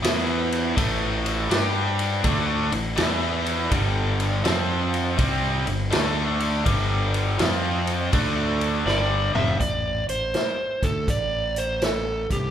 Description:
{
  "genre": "blues rock power trio and southern rock",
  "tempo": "81 BPM",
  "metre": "4/4",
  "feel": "swing 66% on 8ths",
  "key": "A minor",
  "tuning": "A4 = 444 Hz",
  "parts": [
    { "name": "overdriven electric guitar", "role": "riff", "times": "0.0-9.6 s", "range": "F2 to G4", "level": "-24 LUFS", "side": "equal", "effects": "none" },
    { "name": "fuzz fingered electric bass", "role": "bass", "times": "0.0-12.5 s", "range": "F1 to G2", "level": "-26 LUFS", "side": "equal", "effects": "overdrive" },
    { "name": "vintage drum kit", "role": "drums", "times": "0.0-12.4 s", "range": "hi-hat, kick drum, ride cymbal, snare drum, toms", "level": "-26 LUFS", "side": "equal", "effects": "none" },
    { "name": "overdriven slide guitar", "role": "melody", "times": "8.9-12.5 s", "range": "G4 to E5", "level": "-25 LUFS", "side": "right 1 dB", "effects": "none" }
  ],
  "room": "moderate large studio reverb, RT60 1.3 s",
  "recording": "band playing live in one room",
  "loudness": "-21 LUFS",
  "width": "side -9 dB against mid",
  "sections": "0.0-9.6 A section; 9.6-12.5 B section",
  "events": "drum fill 8.9-9.6",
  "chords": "0.0 E5; 0.8 A5; 1.5 G5; 2.2 A5; 3.0 E5; 3.7 G5; 4.5 F5; 5.2 G5; 5.9 D5; 6.7 G5; 7.4 F5; 8.1 D5; 8.9 G5; 9.6 Am",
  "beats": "0.03 | 0.77 1.51 2.24 2.98 | 3.72 4.45 5.19 5.92 | 6.66 7.40 8.13 8.87 | 9.61 10.35 11.09 11.83"
}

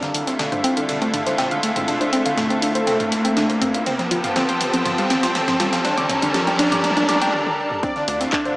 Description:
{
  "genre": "melodic techno",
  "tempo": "121 BPM",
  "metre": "4/4",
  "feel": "straight",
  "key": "D minor",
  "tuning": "A4 = 441 Hz",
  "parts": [
    { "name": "fat analog lead", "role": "melody", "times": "0.0-8.5 s", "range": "D3 to D4", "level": "-26 LUFS", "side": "equal", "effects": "analog chorus, sidechain pumping, dub echo" },
    { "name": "lush unison pad", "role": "sustained chords", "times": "0.0-8.6 s", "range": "D3 to Bb4", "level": "-23 LUFS", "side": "equal", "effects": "chorus, sidechain pumping" },
    { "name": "woody wave-folded pluck", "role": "arpeggios", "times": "0.0-8.5 s", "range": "C4 to D6", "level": "-23 LUFS", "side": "equal", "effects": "chorus, sidechain pumping, digital delay" },
    { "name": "breakbeat sampler-style drum kit", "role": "drums", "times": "0.0-8.4 s", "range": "hi-hat, ride cymbal, snare drum", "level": "-30 LUFS", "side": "equal", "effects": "sidechain pumping on cymbals, high-pass filter on cymbals, studio reverb, high-pass filter on snare, sidechain pumping on hats, high-pass filter on hats, high-pass filter on room" },
    { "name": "house drum kit", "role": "drums", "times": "0.0-8.6 s", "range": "handclaps, hi-hat, toms", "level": "-27 LUFS", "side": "equal", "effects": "sidechain pumping on hats, studio reverb, sidechain pumping on toms" },
    { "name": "riser", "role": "sound effects", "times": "0.0-7.3 s", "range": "none", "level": "-25 LUFS", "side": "equal", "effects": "none" },
    { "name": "soft supersaw", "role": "second line", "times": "7.8-8.5 s", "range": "D4 to D5", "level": "-24 LUFS", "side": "equal", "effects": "sidechain pumping" },
    { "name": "electronic kick drum", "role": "drums", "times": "7.8-8.4 s", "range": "none", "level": "-28 LUFS", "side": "equal", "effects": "studio reverb" },
    { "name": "tight sequencer bass", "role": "bass", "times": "8.1-8.3 s", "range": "D2", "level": "-30 LUFS", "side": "equal", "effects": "sidechain pumping" }
  ],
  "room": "wet lush hall reverb, RT60 2.0 s",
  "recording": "small speaker sound",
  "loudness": "-17 LUFS",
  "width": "side -21 dB against mid",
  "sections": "0.0-7.8 A section",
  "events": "build-up 0.0-7.8; drum fill 0.0-7.3, 7.3-7.8; riser 0.0-7.3; filter sweep on synth pluck 0.0-7.8; break 7.3-7.8",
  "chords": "0.0 Dm7; 3.9 F; 5.8 Gm; 7.8 Dm7",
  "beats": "0.39 0.89 1.38 | 1.88 2.38 2.87 3.37 | 3.86 4.36 4.86 5.35 | 5.85 6.34 6.84 7.33 | 7.83 8.33"
}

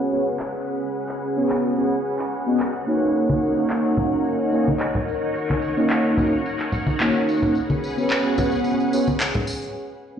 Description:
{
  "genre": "nu-disco, nu disco",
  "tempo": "109 BPM",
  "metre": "4/4",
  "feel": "straight",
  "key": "unclear",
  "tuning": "A4 = 435 Hz",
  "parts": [
    { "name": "mellow synth brass", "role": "accompaniment", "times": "0.0-10.2 s", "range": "Bb3 to Eb5", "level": "-21 LUFS", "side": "equal", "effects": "chorus, vintage 12-bit sampler grit, analog delay" },
    { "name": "string machine, full ensemble", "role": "sustained chords", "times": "0.0-9.7 s", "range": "Db4 to Gb5", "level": "-26 LUFS", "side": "equal", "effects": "phaser, ensemble chorus" },
    { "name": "electronic handclaps", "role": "drums", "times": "0.4-9.3 s", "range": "none", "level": "-28 LUFS", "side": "equal", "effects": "none" },
    { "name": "tambourine and congas", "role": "percussion", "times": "3.1-9.7 s", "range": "none", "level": "-25 LUFS", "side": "left 1 dB", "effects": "none" }
  ],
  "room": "moderate plate reverb, RT60 1.4 s",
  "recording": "played on a big sound system in a bare room, large studio reverb, low-pass filter",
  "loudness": "-19 LUFS",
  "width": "side -8 dB against mid",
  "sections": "0.0-10.2 A section",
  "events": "filter sweep 0.0-10.2; break 9.8-10.2",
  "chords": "0.0 Db7sus4; 3.1 Ebm7; 7.6 Db7sus4",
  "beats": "0.40 | 0.95 1.50 2.05 2.60 | 3.15 3.70 4.25 4.80 | 5.35 5.90 6.45 7.00 | 7.55 8.10 8.65 9.21 | 9.76"
}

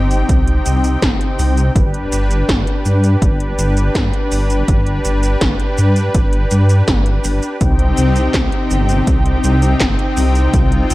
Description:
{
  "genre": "synthwave",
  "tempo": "82 BPM",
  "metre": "4/4",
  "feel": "straight",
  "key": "C harmonic minor",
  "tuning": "A4 = 437 Hz",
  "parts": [
    { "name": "brassy analog pad", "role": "sustained chords", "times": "0.0-10.9 s", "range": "C3 to G5", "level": "-19 LUFS", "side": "left 1 dB", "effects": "chorus, sidechain pumping" },
    { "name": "dark detuned saw bass", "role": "bass", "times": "0.0-10.9 s", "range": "G1 to G2", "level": "-15 LUFS", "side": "equal", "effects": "none" },
    { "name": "80s electronic pad drums", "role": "drums", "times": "0.1-10.9 s", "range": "handclaps, hi-hat, shaker, snare drum", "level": "-22 LUFS", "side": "equal", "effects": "none" },
    { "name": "electronic kick drum", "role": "drums", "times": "0.3-10.7 s", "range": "none", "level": "-17 LUFS", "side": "equal", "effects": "none" }
  ],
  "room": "little or no reverb",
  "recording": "dark, warm production",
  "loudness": "-12 LUFS",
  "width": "side -18 dB against mid",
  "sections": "0.0-10.9 A section",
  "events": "none",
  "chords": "0.0 Cm; 1.8 G; 7.6 Cm",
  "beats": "0.29 1.02 | 1.75 2.49 3.22 3.95 | 4.68 5.41 6.15 6.88 | 7.61 8.34 9.07 9.80 | 10.54"
}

